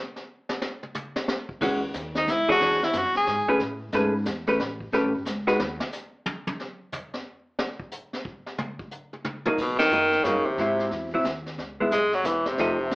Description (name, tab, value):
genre	jazz, small-group swing and bop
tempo	181 BPM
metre	3/4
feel	swing 63% on 8ths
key	E major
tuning	A4 = 440 Hz
part	vintage brush drum kit	drums	0.2-12.9 s	brushed snare drum, crash cymbal, hi-hat, kick drum, ride cymbal, snare drum, toms	-32 LUFS	equal	none
part	vintage hollow-body jazz guitar	accompaniment	1.6-5.6, 9.5-12.8 s	E3 to C#5	-24 LUFS	equal	none
part	upright bass	bass	1.6-5.8, 9.6-12.9 s	E1 to A2	-35 LUFS	equal	none
part	bright tenor saxophone	melody	2.2-3.6, 9.6-12.9 s	B2 to G#4	-22 LUFS	equal	none
room	wet club reverb, RT60 0.7 s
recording	heard from further back in the room, AM radio sound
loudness	-23 LUFS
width	side -24 dB against mid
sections	0.0-1.6 A section; 1.6-9.6 A section; 9.6-12.9 B section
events	tenor saxophone solo 0.0-9.6; drum solo 0.0-1.6, 5.6-9.6; band accent 9.7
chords	0.0 N.C.; 1.6 E69; 2.6 E13; 3.6 Amaj9; 4.6 A9; 5.6 N.C.; 8.6 F#6; 9.6 Bmaj7; 10.6 G#7b13; 11.6 C#m7